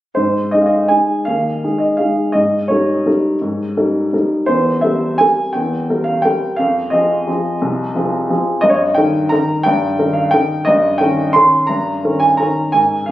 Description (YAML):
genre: classical, piano waltz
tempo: 160-184 BPM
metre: 3/4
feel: rubato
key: unclear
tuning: A4 = 436 Hz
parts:
  - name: warm baby grand piano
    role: solo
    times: 0.1-13.1 s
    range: C2 to C6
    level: -13 LUFS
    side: equal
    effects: none
room: moderate recital hall reverb, RT60 1.6 s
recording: recorded on a phone in the room, club reverb, compression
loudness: -13 LUFS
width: side -14 dB against mid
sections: 0.2-13.1 A section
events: none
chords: 0.2 Ab; 2.4 Eb7/Ab; 4.5 C7/E; 6.6 Fm; 8.6 Eb/G; 10.7 Eb7/G